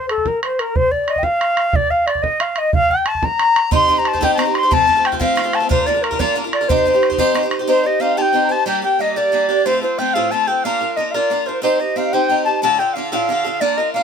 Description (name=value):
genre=celtic folk, Celtic jig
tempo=121 BPM (dotted quarters)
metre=6/8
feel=straight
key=C dorian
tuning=A4 = 435 Hz
part: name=reedy wooden flute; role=melody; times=0.0-14.0 s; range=A4 to C6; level=-17 LUFS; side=left 1 dB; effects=none
part: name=mellow baroque flute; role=second line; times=0.0-14.0 s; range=A4 to C6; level=-22 LUFS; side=left 4 dB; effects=none
part: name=bodhran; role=percussion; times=0.1-7.6 s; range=none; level=-22 LUFS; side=right 3 dB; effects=none
part: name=picked swing-style acoustic guitar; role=accompaniment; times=3.7-14.0 s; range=D2 to C5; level=-19 LUFS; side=right 2 dB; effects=none
room=little or no reverb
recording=close, detailed microphones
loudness=-14 LUFS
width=side -7 dB against mid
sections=0.0-7.7 A section; 7.7-14.0 B section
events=none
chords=0.0 N.C.; 3.7 Cm; 4.7 F; 5.7 Bb; 6.7 Cm; 8.7 Gm; 9.7 F/A; 10.6 Bb; 11.6 Cm; 12.6 Dm